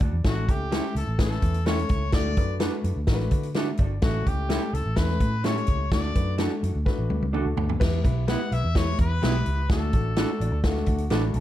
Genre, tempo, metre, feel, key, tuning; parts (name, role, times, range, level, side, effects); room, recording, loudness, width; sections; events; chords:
uptempo 1960s-style soul; 127 BPM; 4/4; straight; D major; A4 = 440 Hz
warm grand piano; accompaniment; 0.0-11.4 s; A3 to B5; -33 LUFS; left 4 dB
vintage muted fingered electric bass; bass; 0.0-11.4 s; G1 to D3; -26 LUFS; equal
swinging big-band drum kit; drums; 0.0-11.4 s; crash cymbal, hi-hat, kick drum, snare drum, toms; -25 LUFS; equal
brilliant trumpet; melody; 0.3-10.6 s; F#4 to F#5; -32 LUFS; left 3 dB
electric guitar through a small old amp; stabs; 0.7-11.2 s; G3 to A4; -32 LUFS; right 5 dB; tape echo
light reverb; dark, warm production; -22 LUFS; side -13 dB against mid
0.0-7.8 A section; 7.8-11.4 B section
drum fill 6.9-7.8; grand piano fill 10.2-11.4
0.2 A; 2.1 D; 4.0 A; 5.9 D; 7.8 Em; 9.7 D